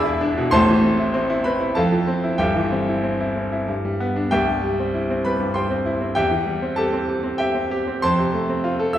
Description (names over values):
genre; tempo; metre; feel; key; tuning
classical, virtuoso piano study; 97 BPM; 3/4; rubato; C major; A4 = 440 Hz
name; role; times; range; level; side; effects
bright grand piano; solo; 0.0-9.0 s; E1 to E6; -18 LUFS; equal; none
room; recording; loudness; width
wet recital hall reverb, RT60 1.7 s; heard from further back in the room; -18 LUFS; side -11 dB against mid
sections
0.0-4.3 A section; 4.3-9.0 B section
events
none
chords
0.0 E7; 0.5 Am; 1.8 Fmaj7; 2.4 C/G; 3.7 G; 4.3 C; 6.2 C/E; 8.0 F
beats
| 0.53 1.14 1.76 | 2.40 3.04 3.68 | 4.31 4.94 5.55 | 6.17 6.78 7.39 | 8.03 8.65